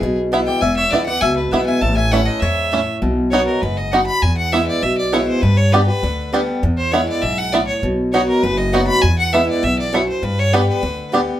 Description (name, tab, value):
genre	bluegrass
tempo	200 BPM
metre	4/4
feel	straight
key	unclear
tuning	A4 = 443 Hz
part	clear fiddle	melody	0.0-11.1 s	G#4 to B5	-21 LUFS	equal	none
part	lap resonator guitar	second line	0.0-3.0 s	E4 to E5	-24 LUFS	left 4 dB	none
part	picked swing-style acoustic guitar	accompaniment	0.0-11.4 s	E2 to G4	-20 LUFS	equal	none
part	upright bass	bass	0.0-11.3 s	E1 to G2	-20 LUFS	equal	none
part	bluegrass banjo	arpeggios	0.3-11.2 s	A3 to G4	-18 LUFS	right 2 dB	none
room	moderate small room reverb, RT60 0.5 s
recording	band playing live in one room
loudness	-15 LUFS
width	side -12 dB against mid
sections	0.0-3.0 A section; 3.0-11.4 B section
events	none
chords	0.0 E; 1.8 A; 3.0 B; 4.2 E; 5.4 G; 6.6 E; 7.8 B; 9.0 E; 10.2 G